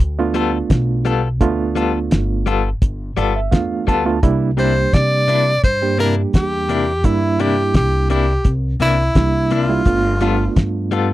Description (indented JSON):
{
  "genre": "straight-eighth soul blues",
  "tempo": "85 BPM",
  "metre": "4/4",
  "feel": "swing 53% on 16ths",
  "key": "G mixolydian",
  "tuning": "A4 = 441 Hz",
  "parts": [
    { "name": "upright bass", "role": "bass", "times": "0.0-11.1 s", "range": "G1 to C3", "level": "-20 LUFS", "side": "equal", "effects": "none" },
    { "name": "barky reed electric piano", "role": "accompaniment", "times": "0.2-11.1 s", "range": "G3 to A5", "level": "-20 LUFS", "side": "right 5 dB", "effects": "overdrive, fast tremolo" },
    { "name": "direct-recorded clean electric guitar", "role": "stabs", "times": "0.3-11.1 s", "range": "C3 to A4", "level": "-19 LUFS", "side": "left 7 dB", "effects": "tremolo" },
    { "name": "cloth-damped thuddy drum kit", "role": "drums", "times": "0.3-11.1 s", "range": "hi-hat, kick drum, snare drum", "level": "-15 LUFS", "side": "equal", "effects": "none" },
    { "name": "clear tenor saxophone", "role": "melody", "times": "4.6-10.6 s", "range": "E4 to D5", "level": "-19 LUFS", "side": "equal", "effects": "none" }
  ],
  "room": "little or no reverb",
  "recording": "dry, close 1970s-style studio recording",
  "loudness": "-14 LUFS",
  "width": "side -15 dB against mid",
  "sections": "0.0-11.1 A section",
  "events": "reed electric piano fill 2.8-4.2",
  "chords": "0.0 G9; 4.2 C9; 9.9 G9",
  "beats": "0.00 0.70 | 1.41 2.11 2.81 3.52 | 4.22 4.93 5.63 6.34 | 7.04 7.75 8.45 9.15 | 9.86 10.56"
}